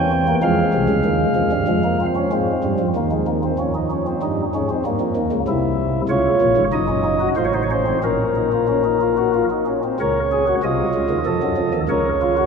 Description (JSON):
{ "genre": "classical, baroque-style 3-part fugue for pipe organ", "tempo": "95 BPM", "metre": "3/4", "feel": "straight", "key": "F minor, Bb minor from 6.1 s", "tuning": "A4 = 440 Hz", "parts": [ { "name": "pipe organ, flutes", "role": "solo", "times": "0.0-12.5 s", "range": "Gb1 to G5", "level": "-17 LUFS", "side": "equal", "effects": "none" } ], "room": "wet cathedral reverb, RT60 4.7 s", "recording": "minimal, uncompressed stereo recording", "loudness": "-17 LUFS", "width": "side -5 dB against mid", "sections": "0.0-2.3 A section; 2.3-10.0 B section; 10.0-12.5 C section", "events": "none", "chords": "0.4 Fm; 2.3 Ab; 3.6 Db/F; 4.2 Gdim; 5.5 C; 6.1 Bbm/Db; 6.7 Ebm/Gb; 7.4 F7/A; 8.0 Bbm; 10.0 Bbm/Db; 11.3 F7; 11.9 Bbm/Db" }